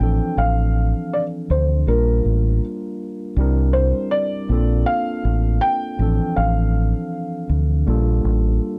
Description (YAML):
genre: hip hop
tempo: 80 BPM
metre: 4/4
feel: swing 57% on 16ths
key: G dorian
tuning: A4 = 440 Hz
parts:
  - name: felt-muted upright piano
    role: melody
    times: 0.0-8.8 s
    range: Bb4 to G5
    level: -26 LUFS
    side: equal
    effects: low-pass filter
  - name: mellow tine electric piano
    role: accompaniment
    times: 0.0-8.8 s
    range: E3 to Bb4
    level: -27 LUFS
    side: equal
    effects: cassette tape, low-pass filter
  - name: deep dub fingered electric bass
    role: bass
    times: 0.0-8.6 s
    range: A1 to D2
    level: -20 LUFS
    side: equal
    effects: tube saturation
room: little or no reverb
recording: dry, gritty hardware recording, cassette tape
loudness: -20 LUFS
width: mono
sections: 0.0-8.8 A section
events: none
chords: 0.0 Dm7/A; 1.9 Gm7; 3.4 C7; 4.5 Bbmaj7; 6.0 Dm7/A; 7.9 Gm7